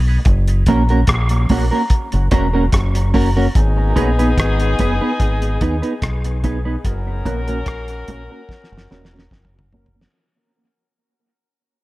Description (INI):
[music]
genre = dub reggae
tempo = 73 BPM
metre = 4/4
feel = straight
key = unclear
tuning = A4 = 440 Hz
[part]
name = deep dub fingered electric bass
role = bass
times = 0.0-10.0 s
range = E1 to D#2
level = -17 LUFS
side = equal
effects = none
[part]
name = mellow electric guitar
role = accompaniment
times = 0.1-10.0 s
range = A#3 to B4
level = -20 LUFS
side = right 2 dB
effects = lush chorus, high-pass filter, low-pass filter, dub echo
[part]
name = cloth-damped thuddy drum kit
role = drums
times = 0.3-10.2 s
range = hi-hat, kick drum, rim click, snare drum, toms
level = -19 LUFS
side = equal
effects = none
[part]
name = warm horn section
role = second line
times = 3.6-9.7 s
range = B3 to A#4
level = -24 LUFS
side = left 3 dB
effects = high-pass filter, dub echo
[sound]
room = light reverb, small room ambience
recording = echo-heavy mix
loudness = -14 LUFS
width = side -18 dB against mid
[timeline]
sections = 0.0-3.5 A section; 3.5-10.1 B section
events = break 0.0-3.5; fade-out 3.5-10.1; filter sweep on clean electric guitar 3.5-10.1; drum fill 8.5-10.1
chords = 0.3 F#; 3.5 G#m; 6.8 F#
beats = | 0.26 1.08 1.91 2.73 | 3.55 4.37 5.19 6.02 | 6.84 7.66 8.48 9.31